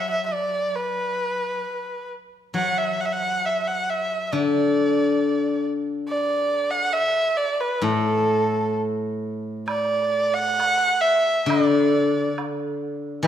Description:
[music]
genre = chinese traditional, Chinese chamber ensemble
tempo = 67 BPM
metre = 2/4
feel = rubato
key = unclear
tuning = A4 = 436 Hz
[part]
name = warm erhu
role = melody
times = 0.0-13.3 s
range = A4 to F#5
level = -22 LUFS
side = right 1 dB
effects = none
[part]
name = steel-string zither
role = accompaniment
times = 0.0-13.3 s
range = A2 to F#3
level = -23 LUFS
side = left 2 dB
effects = none
[part]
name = woodblock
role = percussion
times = 9.7-12.6 s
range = none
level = -33 LUFS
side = right 4 dB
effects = none
[sound]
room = wet recital hall reverb, RT60 1.6 s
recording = none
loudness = -20 LUFS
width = side -10 dB against mid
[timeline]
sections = 0.0-9.7 A section; 9.7-13.3 B section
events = none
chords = none

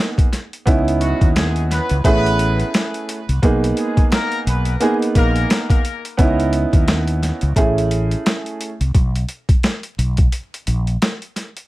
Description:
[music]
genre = hip hop, boom-bap hip-hop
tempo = 87 BPM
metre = 4/4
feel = swing 58% on 16ths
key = unclear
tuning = A4 = 440 Hz
[part]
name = dark upright piano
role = accompaniment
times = 0.0-8.7 s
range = A3 to G#4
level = -20 LUFS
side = right 2 dB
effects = plate reverb
[part]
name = boom bap sampler-style drum kit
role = drums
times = 0.2-11.7 s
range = hi-hat, kick drum, snare drum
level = -17 LUFS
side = equal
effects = none
[part]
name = mellow fretless electric bass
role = bass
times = 0.7-11.0 s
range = A1 to D#2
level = -19 LUFS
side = equal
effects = none
[part]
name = warm horn section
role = stabs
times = 1.0-5.7 s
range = F#3 to B4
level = -24 LUFS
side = left 2 dB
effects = ping-pong delay, plate reverb
[sound]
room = light reverb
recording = vinyl crackle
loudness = -15 LUFS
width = side -18 dB against mid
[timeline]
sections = 0.0-11.7 A section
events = break 10.3-11.7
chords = 0.0 G#madd9; 0.7 C#m9; 2.0 Amaj7; 3.4 G#madd9/B; 6.2 C#m9; 7.6 Amaj7; 8.9 N.C.

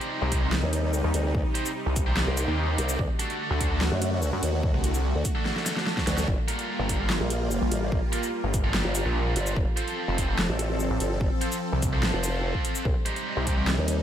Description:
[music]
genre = heavy wobble dubstep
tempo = 146 BPM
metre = 4/4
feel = half-time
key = G minor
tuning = A4 = 442 Hz
[part]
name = supersaw pad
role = sustained chords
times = 0.0-14.0 s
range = C3 to A4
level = -31 LUFS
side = equal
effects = phaser, sidechain pumping
[part]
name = tight distorted guitar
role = stabs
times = 0.0-13.7 s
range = D4 to C5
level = -33 LUFS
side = right 2 dB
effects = distortion, digital delay
[part]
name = big-room dance drum kit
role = drums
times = 0.0-14.0 s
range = handclaps, hi-hat, shaker, snare drum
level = -30 LUFS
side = equal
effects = overdrive, small room ambience
[part]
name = snarling distorted saw bass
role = bass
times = 0.2-13.8 s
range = F1 to F#2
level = -26 LUFS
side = equal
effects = distortion, overdrive
[part]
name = electronic kick drum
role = drums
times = 0.3-13.6 s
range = none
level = -28 LUFS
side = equal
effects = small room ambience
[part]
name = formant-sweep wobble bass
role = bass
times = 0.6-14.0 s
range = F1 to F#2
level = -27 LUFS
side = equal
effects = chorus, overdrive
[sound]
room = little or no reverb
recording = none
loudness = -24 LUFS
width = side -10 dB against mid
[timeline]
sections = 0.0-14.0 A section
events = drum fill 5.5-6.3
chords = 0.0 Cm; 3.0 D; 6.3 Gm7; 9.6 F; 12.9 Cm

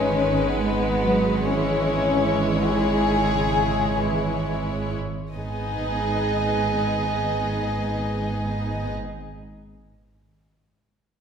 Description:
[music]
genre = classical, slow romantic movement for string orchestra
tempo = 40-66 BPM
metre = 3/4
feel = rubato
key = G# minor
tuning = A4 = 442 Hz
[part]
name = warm chamber violin section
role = melody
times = 0.0-8.9 s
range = B4 to D#5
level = -30 LUFS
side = left 4 dB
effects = none
[part]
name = warm chamber violin section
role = second line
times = 0.0-8.9 s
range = B3 to G#4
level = -25 LUFS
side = left 1 dB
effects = none
[part]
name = rich chamber viola section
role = accompaniment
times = 0.0-8.9 s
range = G#3 to E4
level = -28 LUFS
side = right 1 dB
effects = none
[part]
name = rich chamber cello section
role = bass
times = 0.0-8.9 s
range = G#2 to G#3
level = -29 LUFS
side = right 2 dB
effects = none
[part]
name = warm chamber double bass section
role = bass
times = 0.0-8.9 s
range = G#1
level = -29 LUFS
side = right 3 dB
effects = none
[sound]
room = wet recital hall reverb, RT60 1.7 s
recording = recorded in a church or concert hall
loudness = -21 LUFS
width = side -7 dB against mid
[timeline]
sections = 0.0-5.3 A section; 5.3-9.3 B section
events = slowing down 0.0-5.3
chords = 0.0 G#m; 1.5 C#m/G#; 5.3 G#m

